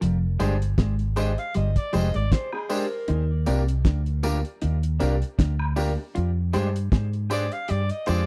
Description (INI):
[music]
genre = lovers rock reggae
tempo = 78 BPM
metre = 4/4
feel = swing 55% on 16ths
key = F dorian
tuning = A4 = 441 Hz
[part]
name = mellow electric guitar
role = riff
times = 0.0-8.2 s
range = F3 to Ab4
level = -34 LUFS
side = equal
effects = subtle chorus
[part]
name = vintage muted fingered electric bass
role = bass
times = 0.0-8.3 s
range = F1 to Ab2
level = -26 LUFS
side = equal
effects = none
[part]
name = cloth-damped thuddy drum kit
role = drums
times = 0.0-8.3 s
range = hi-hat, kick drum, snare drum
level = -25 LUFS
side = equal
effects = none
[part]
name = warm concert grand piano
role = accompaniment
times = 0.4-8.2 s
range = D4 to C5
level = -34 LUFS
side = equal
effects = tape echo
[part]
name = electric guitar through a small old amp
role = stabs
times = 0.4-8.2 s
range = Ab3 to G4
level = -34 LUFS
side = equal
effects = analog chorus
[part]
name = tambourine and woodblock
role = percussion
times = 0.4-8.3 s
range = none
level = -40 LUFS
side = equal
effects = none
[part]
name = mellow alto saxophone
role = melody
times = 1.2-8.3 s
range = Ab4 to F5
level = -34 LUFS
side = equal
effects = tape echo
[sound]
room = studio reverb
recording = dry, close 1970s-style studio recording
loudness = -25 LUFS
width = mono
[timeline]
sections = 0.0-8.3 A section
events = none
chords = 0.0 Fm69; 3.1 Ebmaj7; 6.2 Fm69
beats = | 0.01 0.78 1.55 2.31 | 3.08 3.85 4.62 5.38 | 6.15 6.92 7.68